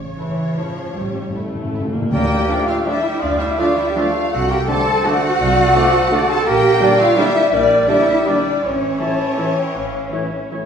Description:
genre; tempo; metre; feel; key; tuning
classical, orchestral ballroom waltz; 146-182 BPM; 3/4; rubato; D minor; A4 = 437 Hz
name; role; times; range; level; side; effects
warm studio violin section; melody; 0.0-10.5 s; C#5 to A5; -28 LUFS; left 3 dB; none
warm studio cello section; bass; 0.0-10.5 s; C#3 to A4; -20 LUFS; right 2 dB; none
warm studio double bass section; bass; 0.0-10.1 s; A1 to D2; -26 LUFS; right 2 dB; none
timpani; percussion; 0.0-2.6 s; A2 to D3; -25 LUFS; left 1 dB; none
warm studio violin section; second line; 0.2-10.5 s; E4 to A5; -26 LUFS; left 3 dB; none
rich studio viola section; accompaniment; 0.2-10.6 s; E3 to E4; -26 LUFS; right 1 dB; none
bright small flute group; second line; 2.1-10.5 s; C#5 to A5; -22 LUFS; left 3 dB; none
warm clarinet; second line; 2.1-10.7 s; A4 to A5; -23 LUFS; right 1 dB; none
warm cor anglais; second line; 2.1-10.5 s; E3 to C4; -24 LUFS; right 1 dB; none
dark trombone section; sustained chords; 2.5-10.6 s; A2 to A3; -29 LUFS; right 2 dB; none
mellow French horn section; sustained chords; 2.5-10.7 s; A3 to E4; -28 LUFS; left 2 dB; none
mellow trumpet section; stabs; 2.5-10.6 s; C#5 to D5; -26 LUFS; right 1 dB; none
room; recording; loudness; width
wet recital hall reverb, RT60 1.4 s; recorded in a church or concert hall; -14 LUFS; side -7 dB against mid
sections
0.0-2.1 A section; 2.1-10.7 B section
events
timpani fill 0.0-2.1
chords
0.0 A; 2.1 Dm; 4.3 D7/C; 6.5 Gm/Bb; 8.6 A

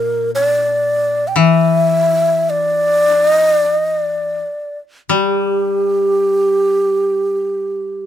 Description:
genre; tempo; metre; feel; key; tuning
japanese traditional, Japanese chamber music; free time; none; none; G kumoi; A4 = 440 Hz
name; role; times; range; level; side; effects
breathy mellow long shakuhachi; melody; 0.0-8.1 s; G4 to G5; -14 LUFS; equal; none
koto; accompaniment; 0.0-8.1 s; Bb2 to G3; -19 LUFS; left 5 dB; none
room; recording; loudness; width
little or no reverb; close, detailed microphones; -13 LUFS; side -10 dB against mid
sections
0.0-8.1 A section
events
none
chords
none

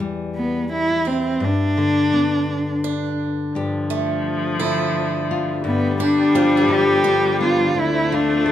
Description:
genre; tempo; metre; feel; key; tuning
folk; 57 BPM (dotted quarters); 6/8; straight; unclear; A4 = 440 Hz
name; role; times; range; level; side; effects
nylon-string guitar; accompaniment; 0.0-8.5 s; D2 to A4; -23 LUFS; left 3 dB; none
dark cello; melody; 0.4-8.5 s; B3 to G4; -19 LUFS; equal; plate reverb
picked swing-style acoustic guitar; arpeggios; 1.1-8.3 s; F3 to A4; -26 LUFS; right 8 dB; none
warm viola; second line; 3.5-8.5 s; F3 to A3; -23 LUFS; left 4 dB; none
warm studio string section; sustained chords; 5.6-8.5 s; D2 to G4; -30 LUFS; right 2 dB; none
room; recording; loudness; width
moderate large studio reverb, RT60 1.0 s; none; -17 LUFS; side -11 dB against mid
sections
0.0-3.5 A section; 3.5-5.6 B section; 5.6-8.5 C section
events
none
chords
0.0 Em; 1.4 G; 3.5 G5; 5.6 G; 7.7 Dm7

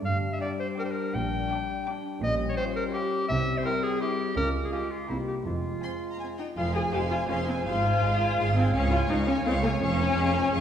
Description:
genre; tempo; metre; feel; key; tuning
cinematic; 167 BPM; 3/4; straight; F minor; A4 = 435 Hz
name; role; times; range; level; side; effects
warm French horn section; sustained chords; 0.0-10.6 s; G3 to G4; -34 LUFS; left 3 dB; none
bright clarinet; second line; 0.1-10.6 s; E4 to G5; -32 LUFS; equal; none
rich chamber cello section; bass; 0.1-10.6 s; Db2 to Db3; -30 LUFS; right 2 dB; none
rich chamber double bass section; bass; 0.1-10.6 s; F1 to Db2; -33 LUFS; right 2 dB; none
rich studio violin section; melody; 0.4-10.6 s; Ab5 to D6; -40 LUFS; right 1 dB; none
rich chamber violin section; second line; 0.4-10.6 s; Ab4 to C6; -38 LUFS; left 1 dB; none
rich chamber viola section; accompaniment; 0.4-10.6 s; Bb3 to Ab4; -30 LUFS; left 2 dB; none
mellow flute section; second line; 6.6-10.6 s; F5 to Ab5; -36 LUFS; right 2 dB; none
room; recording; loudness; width
wet scoring stage reverb, RT60 1.5 s; heard from further back in the room; -25 LUFS; side -9 dB against mid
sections
0.0-6.6 A section; 6.6-10.6 B section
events
none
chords
0.1 G5; 1.2 Gm/Bb; 2.2 Gm7b5/Bb; 3.3 C; 4.4 Db; 5.1 C7; 5.5 Fm; 7.7 Fm/Ab; 8.7 Db; 9.8 Db/F

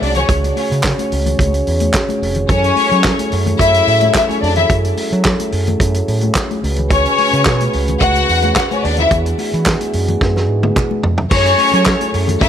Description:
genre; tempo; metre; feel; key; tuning
disco; 109 BPM; 4/4; straight; unclear; A4 = 440 Hz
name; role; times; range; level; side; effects
warm studio string section; second line; 0.0-12.5 s; C#4 to F#5; -15 LUFS; left 3 dB; tape echo
mellow French horn section; sustained chords; 0.0-12.5 s; C#3 to C#5; -21 LUFS; right 2 dB; none
overdriven fingered electric bass; bass; 0.0-12.5 s; F1 to F#3; -17 LUFS; right 1 dB; none
warm soul drum kit; drums; 0.0-12.5 s; crash cymbal, handclaps, hi-hat, kick drum, snare drum, toms; -18 LUFS; right 1 dB; none
congas; percussion; 0.2-12.5 s; none; -25 LUFS; left 5 dB; none
group handclap; percussion; 0.8-12.0 s; none; -29 LUFS; right 3 dB; none
room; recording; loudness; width
light reverb, small room ambience; none; -12 LUFS; side -9 dB against mid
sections
0.0-11.3 A section; 11.3-12.5 A section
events
drum fill 10.2-11.3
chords
0.0 C#sus4; 2.5 F#m9; 6.6 C#7sus4; 9.1 E9; 11.3 F#m9

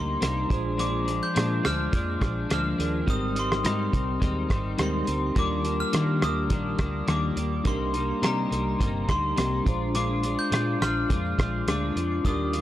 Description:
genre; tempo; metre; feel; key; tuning
indie pop, bedroom pop; 105 BPM; 4/4; straight; unclear; A4 = 436 Hz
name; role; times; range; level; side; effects
glockenspiel with brass mallets; melody; 0.0-12.6 s; Bb5 to G6; -30 LUFS; left 1 dB; lush chorus, tape echo
mellow tine electric piano; accompaniment; 0.0-12.6 s; C4 to C5; -34 LUFS; right 6 dB; medium stereo tremolo, cassette tape
twelve-string electric guitar; accompaniment; 0.0-12.6 s; Ab2 to F4; -29 LUFS; left 4 dB; analog chorus, vibrato effect
vintage muted fingered electric bass; bass; 0.0-12.6 s; G1 to Eb3; -30 LUFS; right 1 dB; none
cloth-damped thuddy drum kit; drums; 0.2-12.6 s; hi-hat, kick drum, rim click; -27 LUFS; right 1 dB; vintage 12-bit sampler grit
room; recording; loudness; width
studio reverb; dry, gritty hardware recording; -23 LUFS; side -13 dB against mid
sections
0.0-12.6 A section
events
none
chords
0.0 Cm7; 0.5 Bb7; 3.1 Abmaj7; 5.4 Ebmaj7; 7.7 Cm7; 9.7 Bb7

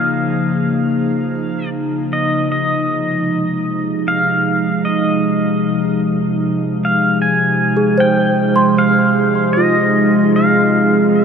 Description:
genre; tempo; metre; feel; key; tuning
ambient; 76 BPM; 3/4; straight; F minor; A4 = 440 Hz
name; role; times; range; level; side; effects
pedal steel guitar; melody; 0.0-11.2 s; Eb5 to Ab5; -19 LUFS; equal; ping-pong delay
warbly tape-like pad; sustained chords; 0.0-11.2 s; C3 to Ab4; -15 LUFS; equal; chorus, built-in reverb
small celesta; arpeggios; 7.8-11.2 s; F4 to C6; -18 LUFS; equal; ping-pong delay
room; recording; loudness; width
wet huge ambient reverb, RT60 7.6 s; none; -13 LUFS; side -6 dB against mid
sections
0.0-2.5 A section; 2.5-11.2 B section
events
none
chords
0.0 Eb9sus4; 2.5 Fm7

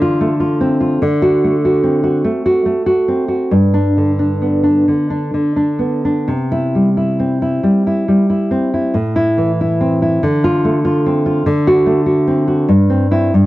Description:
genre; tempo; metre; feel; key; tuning
romantic piece for solo classical guitar; 83-101 BPM; 4/4; rubato; C major; A4 = 440 Hz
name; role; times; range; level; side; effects
nylon-string guitar; solo; 0.0-13.5 s; G2 to F#4; -12 LUFS; equal; none
room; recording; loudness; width
light reverb; dry, close 1970s-style studio recording; -12 LUFS; side -17 dB against mid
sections
0.0-13.5 A section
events
none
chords
0.0 Dm7; 1.0 D7; 3.5 G; 6.3 C; 9.0 Am; 10.2 Dm7; 11.5 D7; 12.7 C/G

